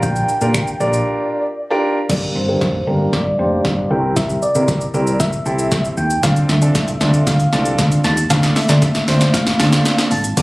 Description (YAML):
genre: dance-pop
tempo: 116 BPM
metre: 4/4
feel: straight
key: D minor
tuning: A4 = 440 Hz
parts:
  - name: soft struck synth lead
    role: melody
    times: 0.0-10.4 s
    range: C5 to A5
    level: -22 LUFS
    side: equal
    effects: chorus, low-pass filter, ping-pong delay
  - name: bright grand piano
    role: accompaniment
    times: 0.0-10.4 s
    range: Bb3 to D5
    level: -21 LUFS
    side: right 1 dB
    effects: sidechain pumping, low-pass filter
  - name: woody fretless electric bass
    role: bass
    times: 0.0-10.4 s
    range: F1 to D3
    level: -17 LUFS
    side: equal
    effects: sidechain pumping
  - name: deep house drum kit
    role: drums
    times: 0.0-10.4 s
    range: crash cymbal, finger snaps, hi-hat, kick drum, shaker, snare drum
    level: -18 LUFS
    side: equal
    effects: overdrive
room: light reverb, digital ambience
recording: recorded on a phone in the room, club reverb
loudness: -14 LUFS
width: side -20 dB against mid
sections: 0.0-2.1 A section; 2.1-10.4 B section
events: break 1.1-2.1; build-up 2.1-10.4; drum fill 2.1-10.4; filter sweep 2.1-10.4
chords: 0.0 Gm7/Bb; 2.1 Gm; 3.9 C7; 6.2 Dm7